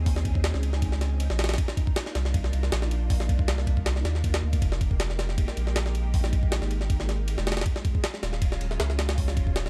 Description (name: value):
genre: drum and bass, jungle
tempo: 158 BPM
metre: 4/4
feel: straight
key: unclear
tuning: A4 = 440 Hz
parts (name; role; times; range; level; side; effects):
- soft string machine; sustained chords; 0.0-9.7 s; Gb3 to Ab4; -40 LUFS; equal; phaser, ensemble chorus, vintage 12-bit sampler grit
- saturated sub bass; bass; 0.0-9.7 s; Eb1 to Eb2; -29 LUFS; equal; none
- jungle sampler-style drum kit; drums; 0.1-9.7 s; hi-hat, kick drum, ride cymbal, snare drum; -29 LUFS; equal; small room ambience
room: little or no reverb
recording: dark, warm production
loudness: -26 LUFS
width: mono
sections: 0.0-9.7 A section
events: none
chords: 0.0 Bbm11; 1.6 Cm11; 4.6 Fm11; 7.7 Ebm11